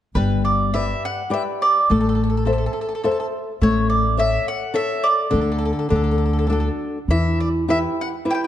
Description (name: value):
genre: italian folk, Italian serenade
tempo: 104 BPM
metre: 3/4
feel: rubato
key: G major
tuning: A4 = 441 Hz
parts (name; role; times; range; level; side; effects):
- mandolin; melody; 0.2-8.5 s; A4 to G5; -22 LUFS; right 1 dB; none
- flamenco guitar; accompaniment; 0.2-8.5 s; D3 to E5; -22 LUFS; left 2 dB; none
- upright bass; bass; 0.2-7.8 s; G1 to E2; -21 LUFS; equal; none
room: light reverb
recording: dark, warm production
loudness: -18 LUFS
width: side -11 dB against mid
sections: 0.2-8.5 A section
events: none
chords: 0.2 G; 1.9 Am; 3.6 A; 5.3 D5; 5.9 D; 7.1 Em